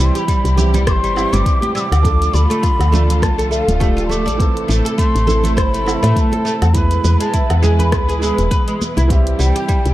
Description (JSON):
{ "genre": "organic downtempo", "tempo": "102 BPM", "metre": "4/4", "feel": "swing 56% on 16ths", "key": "A minor", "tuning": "A4 = 442 Hz", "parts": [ { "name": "mellow bansuri", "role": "melody", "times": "0.0-9.9 s", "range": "E5 to E6", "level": "-22 LUFS", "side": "left 1 dB", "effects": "tape echo" }, { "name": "felt-muted upright piano", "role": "accompaniment", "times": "0.0-9.9 s", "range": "E3 to B4", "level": "-24 LUFS", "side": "right 5 dB", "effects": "sidechain pumping, tape echo" }, { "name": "rich studio string section", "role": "sustained chords", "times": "0.0-9.9 s", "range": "B2 to B4", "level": "-26 LUFS", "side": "left 1 dB", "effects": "vintage 12-bit sampler grit, sidechain pumping" }, { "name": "oud", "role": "arpeggios", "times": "0.0-9.9 s", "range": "G3 to D5", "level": "-22 LUFS", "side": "equal", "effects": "tape echo" }, { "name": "woody FM bass", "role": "bass", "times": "0.0-9.9 s", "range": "D1 to A2", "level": "-15 LUFS", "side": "equal", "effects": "tube saturation" }, { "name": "deep house drum kit", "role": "drums", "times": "0.0-9.9 s", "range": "hi-hat, rim click, shaker, woodblock", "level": "-26 LUFS", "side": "equal", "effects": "none" }, { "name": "electronic kick drum", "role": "drums", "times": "0.3-9.8 s", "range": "none", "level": "-17 LUFS", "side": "equal", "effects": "none" }, { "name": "congas", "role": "percussion", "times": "0.6-9.5 s", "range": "none", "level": "-25 LUFS", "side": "right 3 dB", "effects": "none" } ], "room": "light reverb, small room ambience", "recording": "dark, warm production", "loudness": "-13 LUFS", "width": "side -15 dB against mid", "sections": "0.0-9.9 A section", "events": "none", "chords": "0.0 C; 2.0 Dm; 4.4 Am; 6.8 E; 9.1 C", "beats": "0.28 0.87 1.46 | 2.05 2.63 3.22 3.81 | 4.40 4.99 5.58 6.16 | 6.75 7.34 7.93 8.52 | 9.11 9.69" }